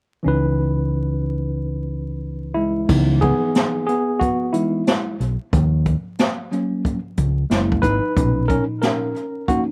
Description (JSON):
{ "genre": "hip hop, jazz-hop", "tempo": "91 BPM", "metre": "4/4", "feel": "swing 62% on 16ths", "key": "unclear", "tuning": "A4 = 440 Hz", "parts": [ { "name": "tine electric piano", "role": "accompaniment", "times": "0.2-9.7 s", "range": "A#2 to B4", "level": "-23 LUFS", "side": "equal", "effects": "overdrive" }, { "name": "deep dub fingered electric bass", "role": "bass", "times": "0.3-8.6 s", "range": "F#1 to D#2", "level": "-23 LUFS", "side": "equal", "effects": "none" }, { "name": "jazz brush drum kit", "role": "drums", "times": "2.9-9.7 s", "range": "crash cymbal, hi-hat, kick drum, snare drum", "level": "-25 LUFS", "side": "equal", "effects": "none" } ], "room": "little or no reverb", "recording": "vinyl crackle", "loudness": "-21 LUFS", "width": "mono", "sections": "0.2-2.9 A section; 2.9-9.7 B section", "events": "tine electric piano solo 2.9-9.7", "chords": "0.2 C#m9; 5.5 D#m7; 7.5 F#9; 8.2 Bmaj9" }